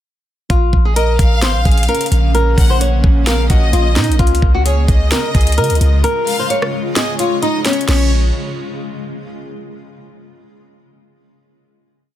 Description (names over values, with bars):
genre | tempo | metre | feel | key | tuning
hip hop, trap | 130 BPM | 4/4 | half-time | Bb minor | A4 = 440 Hz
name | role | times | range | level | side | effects
flamenco guitar | melody | 0.5-8.1 s | Db4 to Db5 | -19 LUFS | left 1 dB | low-pass filter, ping-pong delay
granular cloud pad | sustained chords | 1.6-8.1 s | Db3 to F4 | -24 LUFS | left 1 dB | built-in reverb
warm 808-style bass | bass | 0.5-8.3 s | Ab1 to Db3 | -14 LUFS | equal | none
trap drum kit | drums | 0.5-8.0 s | crash cymbal, hi-hat, kick drum, rim click, snare drum | -15 LUFS | equal | none
clear studio violin section | second line | 1.0-8.1 s | Db5 to Gb5 | -23 LUFS | left 1 dB | ping-pong delay
room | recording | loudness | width
little or no reverb | dense, heavily limited modern master | -12 LUFS | side -12 dB against mid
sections
0.5-7.9 hook; 7.9-9.7 final chord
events
break 6.0-7.9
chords
0.5 Bbm; 4.2 Db; 7.9 Bbmadd9